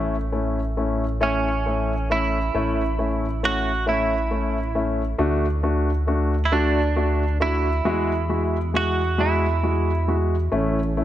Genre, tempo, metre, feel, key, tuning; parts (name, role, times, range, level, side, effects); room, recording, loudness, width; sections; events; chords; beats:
pop; 45 BPM (dotted quarters); 6/8; straight; A major; A4 = 440 Hz
clear concert grand piano; accompaniment; 0.0-11.0 s; G#3 to F#4; -24 LUFS; left 2 dB
chorused synth bass; bass; 0.0-11.0 s; A1 to E2; -24 LUFS; equal
direct-recorded clean electric guitar; melody; 1.2-10.2 s; C#4 to F#4; -25 LUFS; right 4 dB; analog chorus
tonewheel organ; sustained chords; 10.5-11.0 s; E3 to C#4; -26 LUFS; right 3 dB; chorus vibrato, slow rotary speaker
light reverb; -20 LUFS; side -12 dB against mid
0.0-11.0 A section
0.0 A; 5.2 D; 7.9 Eadd9; 10.5 A
1.22 | 2.55 3.87 | 5.20 6.52 | 7.86 9.20 | 10.53